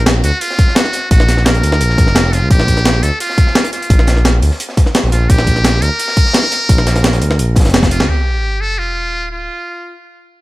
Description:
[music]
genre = liquid drum and bass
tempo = 172 BPM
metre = 4/4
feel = straight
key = unclear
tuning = A4 = 438 Hz
[part]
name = trumpet with metal mute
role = melody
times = 0.0-10.0 s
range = F4 to Bb4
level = -18 LUFS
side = equal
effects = digital delay
[part]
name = smooth synth bass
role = bass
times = 0.0-8.1 s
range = E#1 to D2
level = -13 LUFS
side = equal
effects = none
[part]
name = breakbeat sampler-style drum kit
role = drums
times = 0.1-8.1 s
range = hi-hat, snare drum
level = -16 LUFS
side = equal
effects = studio reverb
[part]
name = crunchy breakbeat drum kit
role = drums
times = 0.1-8.1 s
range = hi-hat, snare drum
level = -25 LUFS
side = equal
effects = high-pass filter on hats, studio reverb, high-pass filter on snare, high-pass filter on room
[part]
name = electronic kick drum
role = drums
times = 0.6-7.9 s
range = none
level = -11 LUFS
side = equal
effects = studio reverb
[part]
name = sub drop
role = sound effects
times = 8.1-9.5 s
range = none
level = -19 LUFS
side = equal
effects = none
[sound]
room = small room ambience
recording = none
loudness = -10 LUFS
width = side -18 dB against mid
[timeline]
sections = 0.0-8.1 A section; 8.1-10.4 B section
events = drop 0.0-8.1; drum fill 7.8; band accent 8.0; impact 8.1-9.5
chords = 0.0 Daug; 2.5 N.C.; 5.3 Fsus4; 8.1 N.C.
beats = 0.06 0.41 0.76 | 1.11 1.46 1.81 2.16 | 2.51 2.85 3.20 3.55 | 3.90 4.25 4.60 4.95 | 5.30 5.65 5.99 6.34 | 6.69 7.04 7.39 7.74 | 8.09 8.44 8.79 9.13 | 9.48 9.83

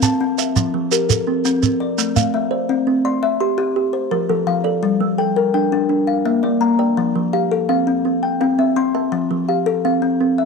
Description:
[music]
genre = southern african traditional, mbira-style interlocking cycle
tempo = 112 BPM (dotted quarters)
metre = 12/8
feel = straight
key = C mixolydian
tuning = A4 = 441 Hz
[part]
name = kalimba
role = arpeggios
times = 0.0-10.5 s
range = F3 to C6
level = -18 LUFS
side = left 9 dB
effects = none
[part]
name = kalimba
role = arpeggios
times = 0.0-10.4 s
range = F3 to A5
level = -20 LUFS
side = right 13 dB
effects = none
[part]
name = shekere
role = percussion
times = 0.0-2.3 s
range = none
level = -18 LUFS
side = right 8 dB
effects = none
[sound]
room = light reverb, small room reverb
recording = 1960s-style stereo with parts hard left and right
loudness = -16 LUFS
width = side -4 dB against mid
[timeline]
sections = 0.0-2.7 A section; 2.7-10.5 B section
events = none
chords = 0.0 C; 0.6 F; 1.6 Am; 2.7 C; 3.8 F; 4.8 Gm; 5.9 Bb; 7.0 F; 8.1 C; 9.1 F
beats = 0.02 | 0.56 1.09 1.63 2.16 | 2.69 3.23 3.76 4.30 | 4.83 5.37 5.90 6.44 | 6.97 7.51 8.05 8.59 | 9.13 9.67 10.21

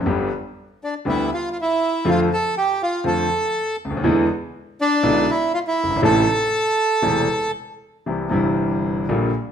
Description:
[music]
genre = tango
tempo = 120 BPM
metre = 4/4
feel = rubato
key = A minor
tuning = A4 = 440 Hz
[part]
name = warm concert grand piano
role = accompaniment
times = 0.0-9.3 s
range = E1 to G4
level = -19 LUFS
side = equal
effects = none
[part]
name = bandoneon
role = melody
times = 0.8-7.5 s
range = D4 to A4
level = -19 LUFS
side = right 1 dB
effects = none
[sound]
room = moderate large studio reverb, RT60 1.1 s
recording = minimal, uncompressed stereo recording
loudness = -18 LUFS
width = side -8 dB against mid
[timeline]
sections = 0.0-8.1 A section; 8.1-9.5 B section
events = none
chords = 0.1 G; 2.1 Dm7/F; 4.0 E7; 6.0 Am; 8.1 C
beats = | 0.06 0.56 1.06 1.56 | 2.06 2.56 3.05 3.54 | 4.04 4.54 5.03 5.53 | 6.03 6.54 7.04 7.55 | 8.06 8.57 9.07

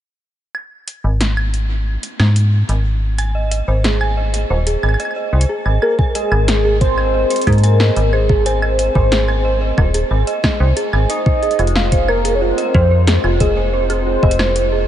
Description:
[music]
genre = IDM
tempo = 91 BPM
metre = 4/4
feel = straight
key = Ab major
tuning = A4 = 440 Hz
[part]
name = electro analog drum machine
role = drums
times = 0.5-14.7 s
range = claves, hi-hat, snare drum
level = -23 LUFS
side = equal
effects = diffuse ambient delay
[part]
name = metallic FM bass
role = bass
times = 1.0-14.9 s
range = Eb1 to Ab2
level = -16 LUFS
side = equal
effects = none
[part]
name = dark detuned synth bell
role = arpeggios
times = 3.2-14.8 s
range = F4 to Ab5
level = -21 LUFS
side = right 2 dB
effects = chorus, tremolo, diffuse ambient delay
[part]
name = warm velvety synth lead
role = melody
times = 5.8-14.9 s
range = Ab4 to F5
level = -18 LUFS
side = equal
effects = chorus, tremolo, diffuse ambient delay
[part]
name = electronic kick drum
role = drums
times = 6.0-14.4 s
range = none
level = -16 LUFS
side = equal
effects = none
[sound]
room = moderate huge ambient reverb, RT60 8.8 s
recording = dreamy mix soaked in reverb, nothing above 10.8 kHz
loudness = -13 LUFS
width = side -11 dB against mid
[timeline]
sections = 0.5-5.8 A section; 5.8-14.9 B section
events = filter sweep on FM bass 0.5-5.8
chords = 0.5 Ab5; 5.8 Ab; 11.1 F7(no3)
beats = | 0.55 1.21 1.87 2.53 | 3.19 3.85 4.50 5.16 | 5.82 6.48 7.14 7.80 | 8.46 9.12 9.78 10.44 | 11.10 11.76 12.42 13.07 | 13.73 14.39

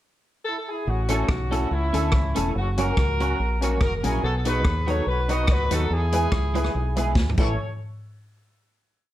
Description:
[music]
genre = ska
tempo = 143 BPM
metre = 4/4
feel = swing 54% on 8ths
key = A major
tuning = A4 = 441 Hz
[part]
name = warm horn section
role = melody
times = 0.5-7.6 s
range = C#4 to D#5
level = -28 LUFS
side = equal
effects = slapback echo
[part]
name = fingered electric bass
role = bass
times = 0.9-7.6 s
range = E1 to E2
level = -24 LUFS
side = equal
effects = none
[part]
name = clean electric guitar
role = accompaniment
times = 1.1-7.5 s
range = F#3 to A4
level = -30 LUFS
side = right 4 dB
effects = ensemble chorus, slapback echo
[part]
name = warm upright piano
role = stabs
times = 1.1-7.5 s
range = C#4 to C#5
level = -31 LUFS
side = left 4 dB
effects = none
[part]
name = vintage drum kit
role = drums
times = 1.1-7.5 s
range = crash cymbal, hi-hat, kick drum, rim click, snare drum, toms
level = -25 LUFS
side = equal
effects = none
[sound]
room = light reverb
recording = none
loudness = -21 LUFS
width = side -14 dB against mid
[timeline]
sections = 0.0-0.9 pickup bar; 0.9-7.6 head; 7.6-9.1 final hit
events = drum fill 7.2-7.6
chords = 0.0 N.C.; 0.9 A; 2.5 F#; 4.2 B; 5.9 E; 7.4 A; 7.6 N.C.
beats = 0.02 0.45 | 0.87 1.29 1.71 2.13 | 2.55 2.97 3.39 3.81 | 4.23 4.65 5.07 5.49 | 5.91 6.32 6.74 7.16

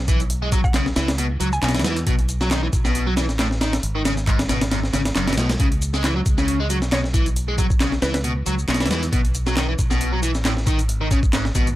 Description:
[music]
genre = breakbeat, breaks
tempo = 136 BPM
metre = 4/4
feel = swing 54% on 16ths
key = C# minor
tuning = A4 = 440 Hz
[part]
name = modern bright fingered electric bass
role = bass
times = 0.0-11.8 s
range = F#1 to E2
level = -24 LUFS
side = equal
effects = none
[part]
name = biting overdriven guitar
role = riff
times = 0.1-11.7 s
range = F#2 to G#3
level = -24 LUFS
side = equal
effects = tape echo
[part]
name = breakbeat sampler-style drum kit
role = drums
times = 0.1-11.8 s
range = hi-hat, kick drum, snare drum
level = -21 LUFS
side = equal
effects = none
[part]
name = electronic shaker and handclaps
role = drums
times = 0.1-11.8 s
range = none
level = -31 LUFS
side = left 1 dB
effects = none
[part]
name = mallet-like synth pluck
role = melody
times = 0.6-1.7, 6.9-8.2 s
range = B4 to G#5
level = -29 LUFS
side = equal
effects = chorus, AM radio sound, cassette tape, tape echo
[sound]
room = little or no reverb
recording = dry, gritty hardware recording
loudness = -18 LUFS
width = side -15 dB against mid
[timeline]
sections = 0.0-11.8 A section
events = none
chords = 0.0 C#m7; 2.1 B7(no3); 3.8 G#m7; 5.6 C#m7; 9.1 B7(no3); 10.9 G#m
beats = | 0.30 0.74 1.19 1.63 | 2.07 2.51 2.95 3.39 | 3.83 4.27 4.71 5.16 | 5.60 6.04 6.48 6.92 | 7.36 7.80 8.24 8.69 | 9.13 9.57 10.01 10.45 | 10.89 11.33

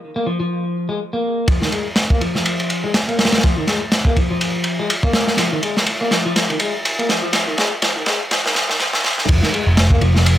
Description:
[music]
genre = breakbeat, breaks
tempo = 123 BPM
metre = 4/4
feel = swing 57% on 16ths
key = F minor pentatonic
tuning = A4 = 438 Hz
[part]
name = electric guitar at the edge of break-up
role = riff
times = 0.2-10.4 s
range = Eb3 to Bb3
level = -21 LUFS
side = left 1 dB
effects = low-pass filter, dub echo
[part]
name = crunchy breakbeat drum kit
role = drums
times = 1.5-10.4 s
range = crash cymbal, kick drum, ride cymbal, snare drum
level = -16 LUFS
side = equal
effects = none
[part]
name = picked electric bass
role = bass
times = 9.3-10.4 s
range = F1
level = -14 LUFS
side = equal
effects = none
[sound]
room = light reverb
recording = high-pass filter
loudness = -15 LUFS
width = side -12 dB against mid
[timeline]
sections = 0.0-1.5 A section; 1.5-9.3 B section; 9.3-10.4 C section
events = filter sweep on clean electric guitar 0.0-1.5, 1.5-9.3; build-up 1.5-9.3; filter sweep 1.5-9.3; drum fill 5.4-9.3; drop 9.3-10.4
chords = 0.0 N.C.; 1.5 Fm; 9.3 N.C.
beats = 0.02 0.51 0.99 | 1.48 1.97 2.46 2.94 | 3.43 3.92 4.41 4.90 | 5.38 5.87 6.36 6.85 | 7.33 7.82 8.31 8.80 | 9.29 9.77 10.26

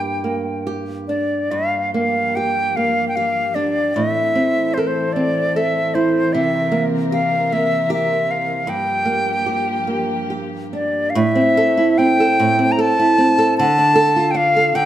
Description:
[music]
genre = celtic folk, Celtic slow air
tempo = 69-78 BPM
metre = 3/4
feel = rubato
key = G dorian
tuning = A4 = 440 Hz
[part]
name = bright reedy wooden flute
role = melody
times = 0.0-14.9 s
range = Bb4 to Bb5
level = -18 LUFS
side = left 1 dB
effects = none
[part]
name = nylon-string guitar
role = accompaniment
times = 0.0-14.9 s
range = G2 to A4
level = -19 LUFS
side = right 2 dB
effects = none
[part]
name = dark studio string section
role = sustained chords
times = 1.5-11.1 s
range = E3 to Bb4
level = -26 LUFS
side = left 3 dB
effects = none
[sound]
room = moderate recital hall reverb, RT60 1.7 s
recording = none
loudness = -15 LUFS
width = side -12 dB against mid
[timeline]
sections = 0.0-1.5 A section; 1.5-11.2 A section; 11.2-14.9 B section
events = none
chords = 0.0 Gm; 1.5 Gm7; 4.0 Am; 6.3 C7; 8.7 Gm7; 11.2 Am; 13.6 Dm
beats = 0.64 | 1.51 2.35 3.16 | 3.96 4.75 5.54 | 6.32 7.11 7.90 | 8.67 9.46 10.31 | 11.16 11.98 12.79 | 13.57 14.36

